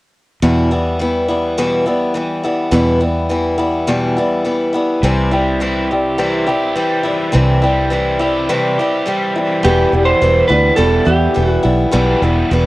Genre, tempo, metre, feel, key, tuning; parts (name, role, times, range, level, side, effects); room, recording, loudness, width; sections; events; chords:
rock; 104 BPM; 4/4; straight; E minor; A4 = 440 Hz
picked acoustic archtop guitar; accompaniment; 0.4-12.7 s; E2 to E4; -15 LUFS; left 1 dB; cassette tape
fingered electric bass; bass; 0.4-12.7 s; E1 to E2; -17 LUFS; equal
crunchy overdriven guitar; riff; 5.0-12.7 s; E2 to G4; -22 LUFS; right 2 dB; cassette tape
lightly driven lead guitar; melody; 9.6-11.6 s; G4 to C5; -15 LUFS; right 1 dB; cassette tape, analog delay
light reverb; home recording on cassette; -13 LUFS; side -18 dB against mid
0.4-9.6 A section; 9.6-12.7 B section
break 8.5-9.6
0.4 Em; 5.0 C; 9.6 Em